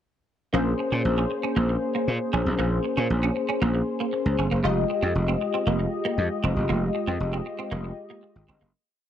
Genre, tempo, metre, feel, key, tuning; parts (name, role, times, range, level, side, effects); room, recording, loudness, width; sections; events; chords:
funk; 117 BPM; 4/4; straight; Bb dorian; A4 = 440 Hz
funky polysynth comp; accompaniment; 0.5-8.7 s; Ab3 to Eb5; -26 LUFS; left 3 dB; chorus
clean electric guitar; riff; 0.5-8.7 s; Bb3 to F4; -30 LUFS; right 6 dB; ensemble chorus
gritty slap bass; bass; 0.5-8.7 s; F1 to Bb2; -24 LUFS; right 1 dB; overdrive
digital ambience; dry, close 1970s-style studio recording; -23 LUFS; side -10 dB against mid
0.5-8.7 verse
fade-out 6.7-8.7
0.5 Bbm9; 4.6 Fm9